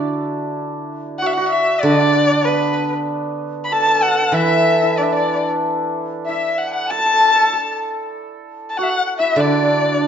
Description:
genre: chinese traditional, Chinese chamber ensemble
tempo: 96 BPM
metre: 2/4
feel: rubato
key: D gong mode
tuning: A4 = 440 Hz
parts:
  - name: hammered dulcimer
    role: second line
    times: 0.0-10.1 s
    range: B3 to A4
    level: -22 LUFS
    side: right 4 dB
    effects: none
  - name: steel-string zither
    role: accompaniment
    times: 0.0-6.2, 9.4-10.1 s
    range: D3 to E3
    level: -20 LUFS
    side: right 2 dB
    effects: none
  - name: rich erhu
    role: melody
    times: 1.2-10.1 s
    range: B4 to B5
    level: -18 LUFS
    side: left 3 dB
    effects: none
  - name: bright reedy dizi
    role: second line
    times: 1.2-10.1 s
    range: B4 to B5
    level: -23 LUFS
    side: left 4 dB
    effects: none
room: moderate recital hall reverb, RT60 1.5 s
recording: nothing above 7.6 kHz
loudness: -15 LUFS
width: side -8 dB against mid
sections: 0.6-10.1 A section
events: none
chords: none

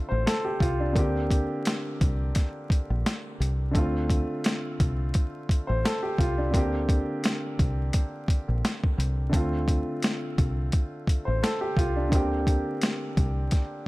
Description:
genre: hip hop, boom-bap hip-hop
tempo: 86 BPM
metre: 4/4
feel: swing 58% on 16ths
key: D minor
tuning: A4 = 440 Hz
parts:
  - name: warm upright piano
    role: accompaniment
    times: 0.0-13.9 s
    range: D3 to C5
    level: -30 LUFS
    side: equal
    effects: cassette tape
  - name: deep dub fingered electric bass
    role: bass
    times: 0.1-13.5 s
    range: A1 to D2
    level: -27 LUFS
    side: equal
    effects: none
  - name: boom bap sampler-style drum kit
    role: drums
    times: 0.3-13.7 s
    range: hi-hat, kick drum, snare drum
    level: -25 LUFS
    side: equal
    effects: none
room: small room ambience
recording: vinyl crackle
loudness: -24 LUFS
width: side -20 dB against mid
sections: 0.0-13.9 A section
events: none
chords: 0.0 Dm7; 1.0 Bb6; 3.7 Dm7; 6.5 Bb6; 9.3 Dm7; 12.1 Bb6

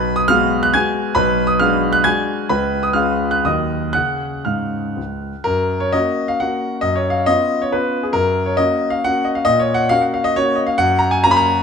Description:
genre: classical, romantic triple-time dance for piano with dotted rhythms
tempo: 110-146 BPM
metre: 3/4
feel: rubato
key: F# major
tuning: A4 = 441 Hz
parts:
  - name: warm concert grand piano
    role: solo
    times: 0.0-11.6 s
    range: B1 to G#6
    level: -15 LUFS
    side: equal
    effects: none
room: light reverb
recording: close, detailed microphones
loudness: -15 LUFS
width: side -6 dB against mid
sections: 0.0-5.5 A section; 5.5-11.6 B section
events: none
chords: 0.0 G#m7/B; 1.2 G#m7b5/B; 2.5 C#7; 3.4 D#m; 3.9 C#; 5.5 F#; 6.8 C#7/F#; 8.2 F#; 9.5 F#/A#; 10.8 F#

